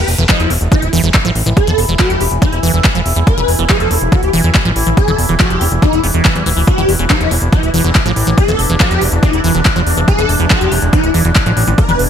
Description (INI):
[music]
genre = psychedelic trance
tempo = 141 BPM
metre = 4/4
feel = straight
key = E phrygian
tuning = A4 = 442 Hz
[part]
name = swarming rave lead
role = melody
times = 0.0-12.0 s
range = E4 to B4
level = -18 LUFS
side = left 1 dB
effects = chorus, phaser, sidechain pumping, tape echo
[part]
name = overtone-sweeping drone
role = sustained chords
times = 0.1-12.1 s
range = E3 to E4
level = -20 LUFS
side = equal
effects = chorus, built-in reverb, sidechain pumping
[part]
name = fat analog bass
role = bass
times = 0.0-12.1 s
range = D1 to E2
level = -15 LUFS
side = equal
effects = none
[part]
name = big-room dance drum kit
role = drums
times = 0.1-12.1 s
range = handclaps, hi-hat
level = -18 LUFS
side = left 1 dB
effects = none
[part]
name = liquid acid bass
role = riff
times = 0.2-11.9 s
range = E3 to E4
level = -19 LUFS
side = moving between left 3 dB and right 5 dB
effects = phaser, auto-pan, sidechain pumping, dub echo
[part]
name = electronic kick drum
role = drums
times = 0.3-11.9 s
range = none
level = -12 LUFS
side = equal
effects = none
[sound]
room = light reverb, digital ambience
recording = none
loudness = -10 LUFS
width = side -8 dB against mid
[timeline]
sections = 0.0-12.1 A section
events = none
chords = 0.0 E5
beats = 0.29 0.72 1.14 | 1.57 1.99 2.42 2.84 | 3.27 3.69 4.12 4.55 | 4.97 5.40 5.82 6.25 | 6.67 7.10 7.53 7.95 | 8.38 8.80 9.23 9.65 | 10.08 10.50 10.93 11.36 | 11.78